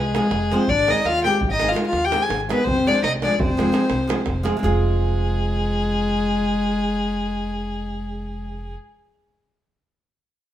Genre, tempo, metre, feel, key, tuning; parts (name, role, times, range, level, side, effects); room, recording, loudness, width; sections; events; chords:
balkan folk, Balkan wedding band; 336 BPM (eighths); 11/8; straight; F minor; A4 = 440 Hz
dark fiddle; melody; 0.0-8.7 s; Ab4 to Ab5; -23 LUFS; left 2 dB
mellow clarinet; second line; 0.0-8.7 s; Ab3 to Ab4; -25 LUFS; left 2 dB
upright bass; bass; 0.0-8.7 s; F1 to Eb2; -26 LUFS; equal
flamenco guitar; accompaniment; 0.1-8.7 s; Eb3 to Ab4; -26 LUFS; right 2 dB
davul; percussion; 0.1-4.8 s; -27 LUFS; right 2 dB
wet stone room reverb, RT60 1.1 s; band playing live in one room; -18 LUFS; side -12 dB against mid
0.0-4.6 A section; 4.6-8.5 B section
0.0 Fm; 0.7 Ab; 2.7 Fm